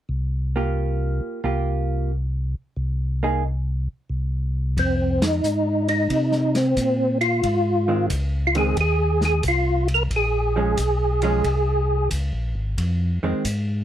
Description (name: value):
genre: soul jazz organ trio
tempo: 90 BPM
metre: 4/4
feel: swing 67% on 8ths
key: F minor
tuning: A4 = 439 Hz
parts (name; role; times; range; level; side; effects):
- mellow tonewheel organ; bass; 0.1-13.8 s; Ab1 to C3; -23 LUFS; equal; chorus vibrato, slow rotary speaker
- vintage hollow-body jazz guitar; accompaniment; 0.6-3.4, 7.9-13.4 s; Eb3 to Ab4; -25 LUFS; right 3 dB; none
- percussive tonewheel organ; melody; 4.8-12.1 s; C4 to Bb4; -21 LUFS; equal; chorus vibrato, fast rotary speaker
- vintage drum kit; drums; 4.8-13.7 s; hi-hat, kick drum, ride cymbal, snare drum; -31 LUFS; equal; none
room: little or no reverb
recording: none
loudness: -20 LUFS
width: side -11 dB against mid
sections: 0.0-4.8 A section; 4.8-13.8 B section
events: band accent 5.1-5.4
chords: 0.0 C7sus4; 2.1 N.C.; 4.8 Fm7; 10.1 Bbm7; 12.8 Fm7